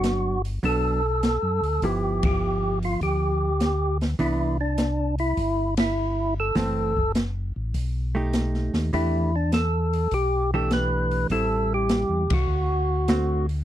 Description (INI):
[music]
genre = soul jazz organ trio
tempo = 101 BPM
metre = 4/4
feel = swing 69% on 8ths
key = unclear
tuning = A4 = 441 Hz
[part]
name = percussive tonewheel organ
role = melody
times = 0.0-13.5 s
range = D4 to B4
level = -25 LUFS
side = equal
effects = slow rotary speaker, overdrive
[part]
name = hollow-body jazz guitar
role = accompaniment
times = 0.0-13.5 s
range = D3 to G4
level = -28 LUFS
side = right 3 dB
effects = none
[part]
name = mellow tonewheel organ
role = bass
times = 0.0-13.6 s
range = F#1 to F#2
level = -26 LUFS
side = left 1 dB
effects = chorus vibrato, slow rotary speaker
[part]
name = open jazz drum kit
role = drums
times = 0.0-13.6 s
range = hi-hat, kick drum, ride cymbal, snare drum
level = -26 LUFS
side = equal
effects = none
[sound]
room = little or no reverb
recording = dry, close 1970s-style studio recording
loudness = -22 LUFS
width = side -12 dB against mid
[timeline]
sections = 0.0-13.6 A section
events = band accent 2.1, 5.7, 12.2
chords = 0.0 Gmaj7; 1.8 G6; 4.2 Cmaj9; 6.6 F#m7b5; 7.7 B7b13; 8.9 Em7; 11.3 Am7; 12.5 D7